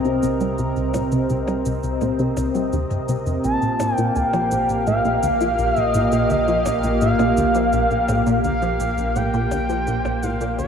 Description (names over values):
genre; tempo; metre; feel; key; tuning
ambient, sequencer-driven space music; 84 BPM; 4/4; straight; unclear; A4 = 441 Hz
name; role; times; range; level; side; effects
lush unison pad; sustained chords; 0.0-10.7 s; Bb2 to F5; -22 LUFS; equal; chorus
warm sub bass; bass; 0.0-10.7 s; Bb1 to C2; -30 LUFS; equal; tube saturation
shaker and percussion blips; percussion; 0.0-10.7 s; none; -35 LUFS; left 2 dB; tape echo
plucky analog bass; riff; 0.1-10.7 s; Bb1 to G3; -24 LUFS; equal; ensemble chorus, tape echo
expressive synth lead; melody; 3.4-10.7 s; D5 to A5; -21 LUFS; equal; chorus, tape echo
room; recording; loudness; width
wet plate reverb, RT60 3.0 s; echo-heavy mix; -18 LUFS; side -7 dB against mid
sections
0.0-10.7 A section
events
fade-in on sub bass 0.0-10.7; fade-in on drum 0.0-10.7; filter sweep on analog synth bass 0.0-10.7; fade-out 7.3-10.7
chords
0.0 Cm7; 3.4 Bb6